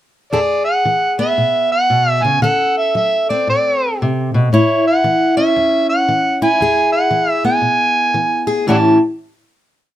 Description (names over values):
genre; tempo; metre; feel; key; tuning
acoustic country blues, solo or duo; 115 BPM; 4/4; swing 62% on 8ths; A major; A4 = 440 Hz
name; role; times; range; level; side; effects
overdriven harmonica; melody; 0.3-9.0 s; A4 to A5; -14 LUFS; right 2 dB; none
fingerpicked steel-string acoustic guitar; accompaniment; 0.3-9.0 s; E2 to A4; -16 LUFS; left 1 dB; none
room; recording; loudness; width
light reverb; close, detailed microphones; -13 LUFS; side -12 dB against mid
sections
0.3-8.7 head; 8.7-10.0 final chord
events
none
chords
0.3 E; 2.4 D7; 4.5 A; 6.6 E; 8.7 A7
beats
| 0.33 0.85 1.38 1.91 | 2.43 2.95 3.48 4.00 | 4.52 5.04 5.56 6.08 | 6.60 7.12 7.64 8.16 | 8.68